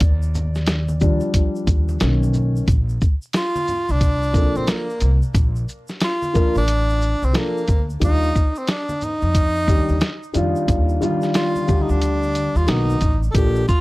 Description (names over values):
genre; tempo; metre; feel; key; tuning
hip hop, jazz-hop; 90 BPM; 4/4; swing 63% on 16ths; Bb major; A4 = 439 Hz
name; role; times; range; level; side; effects
dark grand piano; accompaniment; 0.0-13.6 s; D3 to D5; -23 LUFS; left 1 dB; none
upright bass; bass; 0.0-13.6 s; A1 to F2; -20 LUFS; equal; none
lo-fi sampler-style drum kit; drums; 0.0-13.8 s; hi-hat, kick drum, shaker, snare drum; -18 LUFS; equal; none
egg shaker and congas; percussion; 0.0-13.8 s; none; -35 LUFS; right 1 dB; none
breathy tenor saxophone; melody; 3.4-13.8 s; Bb3 to A4; -23 LUFS; equal; analog delay
room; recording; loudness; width
little or no reverb; dry, gritty hardware recording, vinyl crackle; -17 LUFS; side -20 dB against mid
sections
0.0-2.7 A section; 2.7-13.8 B section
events
grand piano solo 0.0-2.7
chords
0.0 Ebmaj9; 2.0 Bmaj7; 2.7 Bbmaj7; 8.0 Ebmaj9; 12.7 Bmaj7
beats
| 0.02 0.68 1.35 2.02 | 2.68 3.35 4.02 4.68 | 5.35 6.02 6.68 7.35 | 8.02 8.68 9.35 10.02 | 10.68 11.35 12.02 12.68 | 13.35